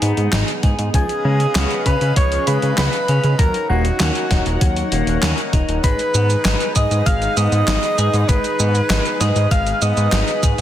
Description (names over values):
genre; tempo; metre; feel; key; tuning
synthwave; 98 BPM; 4/4; straight; G# dorian; A4 = 440 Hz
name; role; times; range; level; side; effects
chorused pulse-width pad; sustained chords; 0.0-10.6 s; B3 to F#5; -25 LUFS; equal; sidechain pumping
semi-hollow electric guitar; arpeggios; 0.0-10.6 s; E#3 to G#4; -27 LUFS; left 3 dB; tape echo
fat analog bass; bass; 0.0-10.6 s; D#1 to C#3; -19 LUFS; equal; none
gated 80s digital drum machine; drums; 0.0-10.6 s; handclaps, hi-hat, shaker, snare drum; -22 LUFS; equal; gated reverb, gated reverb snare
electronic kick drum; drums; 0.6-10.6 s; none; -17 LUFS; equal; none
warm alto saxophone; melody; 0.9-10.5 s; F#4 to E#5; -22 LUFS; equal; tape echo
FM electric piano with soft pad layer; second line; 0.9-10.4 s; F#5 to E#6; -27 LUFS; right 1 dB; chorus, tape echo
room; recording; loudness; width
light reverb; dense, heavily limited modern master; -15 LUFS; side -11 dB against mid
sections
0.0-10.6 A section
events
none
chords
0.0 G#m; 0.9 C#7; 3.4 D#m7; 5.8 G#m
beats
0.33 | 0.94 1.55 2.17 2.78 | 3.39 4.00 4.61 5.23 | 5.84 6.45 7.06 7.67 | 8.29 8.90 9.51 10.12